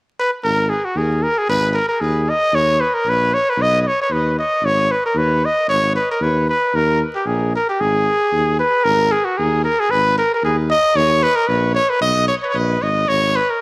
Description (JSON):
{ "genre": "balkan folk", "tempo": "114 BPM", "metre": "2/4", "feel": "swing 55% on 16ths", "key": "G# minor", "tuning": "A4 = 440 Hz", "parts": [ { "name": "growling trumpet", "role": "melody", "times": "0.2-13.6 s", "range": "F#4 to D#5", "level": "-16 LUFS", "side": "equal", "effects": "cassette tape, tape echo" }, { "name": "mellow tuba", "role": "bass", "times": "0.4-13.4 s", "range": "G#1 to D#2", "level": "-20 LUFS", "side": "equal", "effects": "none" } ], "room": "moderate spring reverb, RT60 1.7 s, studio reverb", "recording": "home recording on cassette, vinyl crackle", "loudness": "-14 LUFS", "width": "side -28 dB against mid", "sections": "0.4-8.8 A section; 8.8-13.6 A section", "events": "none", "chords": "0.4 G#5; 2.5 D#5; 3.6 B; 4.6 G#5; 6.7 D#5; 7.8 G#5; 11.0 D#5; 12.0 G#madd9; 13.1 G#5" }